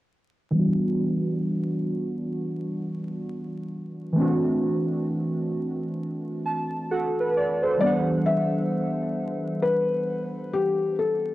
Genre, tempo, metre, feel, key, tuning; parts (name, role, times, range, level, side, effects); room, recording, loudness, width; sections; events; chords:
hip hop; 66 BPM; 4/4; swing 60% on 16ths; E minor; A4 = 436 Hz
warbly lo-fi synth keys; accompaniment; 0.5-11.3 s; E3 to A5; -24 LUFS; right 1 dB; chorus, cassette tape, low-pass filter
felt-muted upright piano; melody; 7.8-11.3 s; G4 to E5; -25 LUFS; left 3 dB
moderate booth ambience, RT60 0.2 s; home recording on cassette, vinyl crackle; -23 LUFS; side -16 dB against mid
0.5-7.8 A section; 7.8-11.3 B section
filter sweep on synth keys 0.5-7.8; synth keys fill 6.0-7.8
0.5 Em9; 4.2 D7; 7.8 Em9